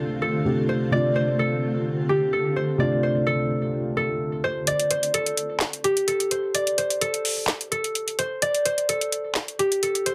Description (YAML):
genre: hip hop, trap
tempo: 128 BPM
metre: 4/4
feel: half-time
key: D minor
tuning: A4 = 440 Hz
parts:
  - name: concert harp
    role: melody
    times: 0.0-10.1 s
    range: G4 to D5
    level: -27 LUFS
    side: equal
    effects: none
  - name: dark concert grand piano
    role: accompaniment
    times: 0.0-4.7 s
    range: C3 to G4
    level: -28 LUFS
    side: equal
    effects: none
  - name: granular cloud pad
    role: sustained chords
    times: 0.0-4.6 s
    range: D3 to F4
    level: -32 LUFS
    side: equal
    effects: built-in reverb
  - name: trap drum kit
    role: drums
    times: 4.7-10.1 s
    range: handclaps, hi-hat, snare drum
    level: -27 LUFS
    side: equal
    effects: none
room: moderate booth ambience, RT60 0.2 s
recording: dense, heavily limited modern master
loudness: -24 LUFS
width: mono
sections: 0.0-4.7 A section; 4.7-10.1 B section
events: kick muted 4.7-10.1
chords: 0.0 Dm7; 4.7 N.C.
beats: 0.45 | 0.92 1.39 1.86 2.33 | 2.80 3.26 3.73 4.20 | 4.67 5.14 5.61 6.08 | 6.55 7.01 7.48 7.95 | 8.42 8.89 9.36 9.83